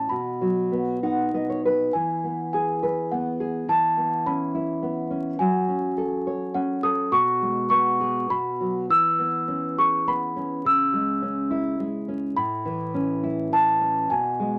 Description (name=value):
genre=children's music, lullaby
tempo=104 BPM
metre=3/4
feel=rubato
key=E major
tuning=A4 = 439 Hz
part: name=celesta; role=melody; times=0.0-14.6 s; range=F#5 to E6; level=-26 LUFS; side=equal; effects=none
part: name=nylon-string guitar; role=accompaniment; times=0.0-14.6 s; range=A2 to F#5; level=-28 LUFS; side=equal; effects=none
room=moderate studio ambience, RT60 0.5 s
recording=vinyl crackle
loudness=-24 LUFS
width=mono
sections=0.0-1.9 A section; 1.9-14.6 B section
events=nylon-string guitar fill 0.7-1.9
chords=0.1 B; 1.9 Eadd9; 3.7 Aadd9/E; 5.4 F#m; 7.1 G#madd11/B; 8.3 B5; 8.9 E6; 10.7 C#m; 12.4 Aadd9